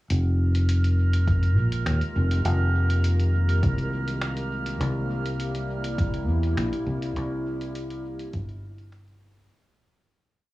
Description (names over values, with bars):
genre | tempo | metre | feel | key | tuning
ambient dub | 102 BPM | 4/4 | straight | F minor | A4 = 442 Hz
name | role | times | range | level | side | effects
warbly tape-like pad | sustained chords | 0.7-9.5 s | C3 to G4 | -34 LUFS | equal | chorus, built-in reverb, cassette tape
fingered electric bass | bass | 0.1-9.5 s | F1 to E2 | -23 LUFS | equal | tube saturation
lo-fi sampler-style drum kit | drums | 0.1-9.5 s | finger snaps, hi-hat | -38 LUFS | equal | cassette tape, dub echo
drifting glass-harmonics texture | texture | 0.4-9.5 s | Bb4 | -35 LUFS | right 4 dB | chorus, built-in reverb, cassette tape
electronic kick drum | drums | 1.3-8.5 s | none | -26 LUFS | equal | cassette tape
room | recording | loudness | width
little or no reverb | home recording on cassette, small room ambience | -22 LUFS | side -18 dB against mid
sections
0.1-9.5 groove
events
fade-in on ambient pad 0.1-9.5; fade-out 6.4-9.5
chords
0.1 Fm11; 4.8 C7